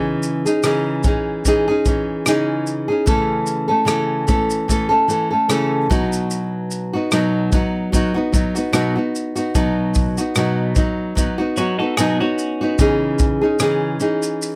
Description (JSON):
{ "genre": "acoustic pop", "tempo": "74 BPM", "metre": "4/4", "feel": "swing 55% on 16ths", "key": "unclear", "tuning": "A4 = 440 Hz", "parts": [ { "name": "nylon-string guitar", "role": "accompaniment", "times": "0.0-14.6 s", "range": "B2 to A4", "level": "-20 LUFS", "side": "equal", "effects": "none" }, { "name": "natural country drum kit", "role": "drums", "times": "0.2-14.6 s", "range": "kick drum, rim click, shaker", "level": "-23 LUFS", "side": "equal", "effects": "none" }, { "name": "twelve-string electric guitar", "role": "second line", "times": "11.6-12.8 s", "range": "C#4 to A4", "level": "-27 LUFS", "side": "equal", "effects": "none" } ], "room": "little or no reverb", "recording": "close, detailed microphones", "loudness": "-19 LUFS", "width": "mono", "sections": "0.0-12.8 A section; 12.8-14.6 B section", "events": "none", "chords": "0.0 C#madd9; 3.1 A/C#; 5.9 B; 12.8 C#madd9", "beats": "0.64 1.45 2.27 | 3.08 3.89 4.70 5.51 | 6.32 7.13 7.94 8.75 | 9.56 10.37 11.18 11.98 | 12.79 13.60 14.41" }